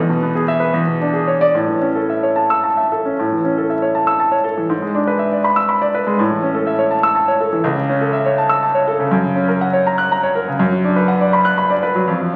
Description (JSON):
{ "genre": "classical, virtuoso piano study", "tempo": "72-83 BPM (dotted quarters)", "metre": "6/8", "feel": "rubato", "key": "A major", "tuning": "A4 = 441 Hz", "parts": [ { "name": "clear concert grand piano", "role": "solo", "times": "0.0-12.4 s", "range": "C#2 to F#6", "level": "-17 LUFS", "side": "equal", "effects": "none" } ], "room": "wet recital hall reverb, RT60 1.3 s", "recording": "very old 78 rpm record, vinyl crackle", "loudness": "-17 LUFS", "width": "mono", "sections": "0.0-3.2 A section; 3.2-12.4 B section", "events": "none", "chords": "0.0 E; 0.7 E6; 1.5 A; 4.7 E7/G#; 6.2 A; 7.6 A/C#; 9.1 F#; 10.6 Bm/F#", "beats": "0.73 | 1.54 2.36 | 3.19 3.94 | 4.69 5.43 | 6.17 6.90 | 7.64 8.37 | 9.11 9.85 | 10.59 11.33 | 12.09" }